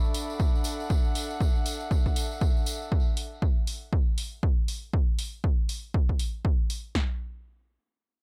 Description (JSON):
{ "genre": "deep house", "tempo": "119 BPM", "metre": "4/4", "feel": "swing 59% on 16ths", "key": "unclear", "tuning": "A4 = 440 Hz", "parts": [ { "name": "tambourine", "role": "percussion", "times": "0.0-2.9 s", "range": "none", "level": "-42 LUFS", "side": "equal", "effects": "tape echo" }, { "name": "airy breathy pad", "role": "texture", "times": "0.0-2.9 s", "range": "D4 to B5", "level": "-39 LUFS", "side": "equal", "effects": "chorus, sidechain pumping" }, { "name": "electronic hi-hat", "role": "drums", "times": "0.1-6.8 s", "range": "none", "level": "-39 LUFS", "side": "equal", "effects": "none" }, { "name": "punchy analog drum machine", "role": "drums", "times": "0.4-7.1 s", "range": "kick drum, snare drum, toms", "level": "-28 LUFS", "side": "equal", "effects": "none" } ], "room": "digital ambience", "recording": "echo-heavy mix", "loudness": "-28 LUFS", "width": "mono", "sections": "0.0-7.0 A section; 7.0-8.2 B section", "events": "none", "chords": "0.0 Dadd9; 7.0 N.C." }